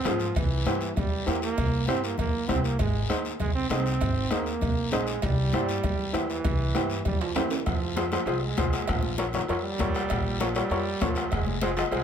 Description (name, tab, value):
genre	latin, cumbia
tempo	197 BPM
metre	4/4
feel	straight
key	F minor from 7.7 s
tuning	A4 = 440 Hz
part	bright trombone	second line	0.0-12.0 s	Eb3 to C4	-31 LUFS	right 4 dB	none
part	upright bass	bass	0.0-12.0 s	F1 to Ab2	-31 LUFS	equal	none
part	warm upright piano	accompaniment	0.1-12.0 s	Eb4 to Eb5	-31 LUFS	left 1 dB	none
part	bombo	percussion	0.1-12.0 s	none	-30 LUFS	equal	none
part	congas	percussion	0.1-12.0 s	none	-36 LUFS	left 7 dB	none
part	guiro	percussion	0.1-12.0 s	none	-39 LUFS	left 6 dB	none
part	timbales and cowbell	percussion	0.1-12.0 s	none	-38 LUFS	right 8 dB	none
room	light reverb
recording	none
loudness	-24 LUFS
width	side -8 dB against mid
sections	0.0-7.7 A section; 7.7-12.0 B section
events	drum fill 7.2-7.7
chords	0.4 C7; 2.8 Ab; 5.2 C; 7.7 Fm; 8.9 Bbm; 11.3 Fm